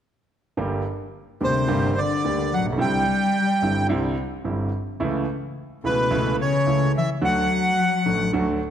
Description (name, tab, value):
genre	tango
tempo	108 BPM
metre	4/4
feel	rubato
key	unclear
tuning	A4 = 441 Hz
part	clear concert grand piano	accompaniment	0.6-8.6 s	G1 to G4	-25 LUFS	right 2 dB	none
part	bandoneon	melody	1.4-8.3 s	B4 to G5	-23 LUFS	right 2 dB	none
part	dark cello	second line	1.4-8.3 s	B2 to G3	-24 LUFS	left 4 dB	none
room	wet scoring stage reverb, RT60 1.6 s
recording	none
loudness	-20 LUFS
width	side -9 dB against mid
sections	0.6-8.7 A section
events	none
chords	0.6 Gm; 2.8 Cadd9; 5.0 A/C#; 7.2 D